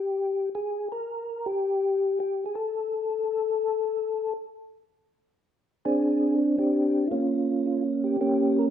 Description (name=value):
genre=jazz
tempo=109 BPM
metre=4/4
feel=swing 67% on 8ths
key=unclear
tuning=A4 = 438 Hz
part: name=percussive tonewheel organ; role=solo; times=0.0-8.7 s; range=Bb3 to Bb4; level=-24 LUFS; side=left 1 dB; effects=chorus vibrato, slow rotary speaker
room=moderate large studio reverb, RT60 1.2 s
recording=band playing live in one room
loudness=-24 LUFS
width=side -9 dB against mid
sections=0.0-4.9 A section; 4.9-8.7 A section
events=none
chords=0.0 N.C.; 4.9 Csus2; 7.1 Bbm6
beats=| 0.53 1.07 1.62 2.17 | 2.72 3.27 3.82 4.37 | 4.92 5.46 6.01 6.56 | 7.11 7.66 8.20